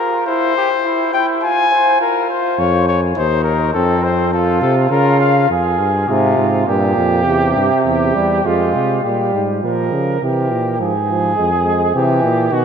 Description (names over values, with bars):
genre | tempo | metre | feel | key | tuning
classical, imitative canzona for brass ensemble | 103 BPM | 3/4 | straight | unclear | A4 = 442 Hz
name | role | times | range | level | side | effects
mellow trumpet | melody | 0.0-5.5, 12.5-12.6 s | A4 to Ab5 | -17 LUFS | left 5 dB | none
warm flugelhorn | second line | 0.0-12.6 s | C4 to C5 | -18 LUFS | right 2 dB | none
warm bass trombone | bass | 2.6-12.6 s | Eb2 to Db3 | -18 LUFS | equal | none
clear trombone | accompaniment | 6.1-12.6 s | Bb2 to Ab3 | -18 LUFS | right 2 dB | none
room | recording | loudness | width
wet cathedral reverb, RT60 5.9 s | in a vast, echoing space | -13 LUFS | side -7 dB against mid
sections
0.0-9.0 A section; 9.0-12.6 B section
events
none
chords
0.3 C/E; 1.4 Fm; 2.0 Bbm/F; 3.2 Cm7/Eb; 3.7 F; 4.9 Bbm/Db; 5.5 Fm; 6.7 Fsus24; 7.3 C/E; 8.4 Fm; 9.0 Gdim; 10.2 C; 10.8 Fm/Ab; 11.9 C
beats
| 0.28 0.85 1.43 | 2.00 2.58 3.16 | 3.75 4.33 4.91 | 5.50 6.08 6.67 | 7.26 7.85 8.44 | 9.03 9.62 10.21 | 10.80 11.37 11.95 | 12.52